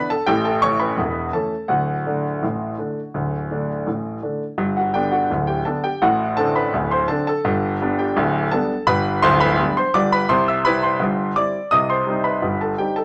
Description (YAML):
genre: ragtime piano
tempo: 84 BPM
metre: 2/4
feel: straight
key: G major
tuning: A4 = 440 Hz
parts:
  - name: clear concert grand piano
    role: solo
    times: 0.0-13.0 s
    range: D1 to E6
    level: -20 LUFS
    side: equal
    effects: none
room: moderate studio reverb, RT60 0.7 s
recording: none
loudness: -20 LUFS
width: mono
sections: 0.0-4.6 A section; 4.6-13.0 A section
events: none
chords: 0.3 A7; 1.7 D; 4.6 G; 6.0 D7/A; 7.4 G; 10.3 C; 11.7 Cm